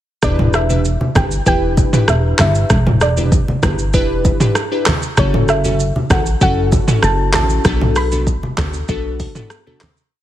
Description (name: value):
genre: afrobeats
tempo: 97 BPM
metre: 4/4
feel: straight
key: E dorian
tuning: A4 = 444 Hz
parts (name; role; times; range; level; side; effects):
- soft round pluck; melody; 0.2-9.2 s; C#5 to B5; -21 LUFS; right 1 dB; chorus, digital delay
- glassy digital keys; accompaniment; 0.2-9.8 s; B3 to B4; -21 LUFS; left 1 dB; chorus
- plucky analog bass; bass; 0.2-9.3 s; E1 to D2; -17 LUFS; equal; none
- deep house drum kit; drums; 0.2-10.1 s; handclaps, hi-hat, kick drum, rim click, shaker, toms; -16 LUFS; equal; vintage 12-bit sampler grit
- congas; percussion; 0.4-10.0 s; none; -22 LUFS; right 1 dB; none
room: light reverb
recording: heavily compressed radio sound, multiband compression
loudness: -13 LUFS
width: side -12 dB against mid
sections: 0.2-10.1 chorus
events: fade-out 7.6-10.1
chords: 0.2 Em7; 5.2 F#m7; 7.6 Bm7